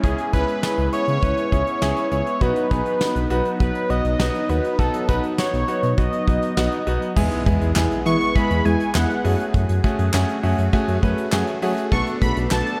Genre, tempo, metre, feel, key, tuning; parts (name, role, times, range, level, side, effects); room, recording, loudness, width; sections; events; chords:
synth-pop; 101 BPM; 4/4; straight; E major; A4 = 438 Hz
octave-doubled lead; melody; 0.0-12.8 s; G#4 to C#6; -27 LUFS; equal; chorus, delay
bright concert grand piano; accompaniment; 0.0-12.7 s; G#3 to B4; -28 LUFS; equal
phased analog pad; sustained chords; 0.0-12.8 s; F#3 to G#4; -29 LUFS; equal; phaser, chorus
smooth synth bass; bass; 0.0-12.6 s; B1 to F#3; -25 LUFS; equal
soft brush drum kit; drums; 0.0-12.8 s; crash cymbal, handclaps, hi-hat, kick drum, snare drum; -26 LUFS; equal
downlifter and impact; sound effects; 0.0-2.4, 7.2-9.5 s; -36 LUFS; equal
soft round pluck; arpeggios; 7.2-12.7 s; G#3 to G#4; -31 LUFS; equal
moderate lush hall reverb, RT60 2.0 s; dreamy mix soaked in reverb; -21 LUFS; mono
0.0-7.2 A section; 7.2-12.8 B section
impact 7.2-9.5
0.0 C#m; 2.4 B; 7.2 E; 9.2 F#madd9; 11.9 Bm7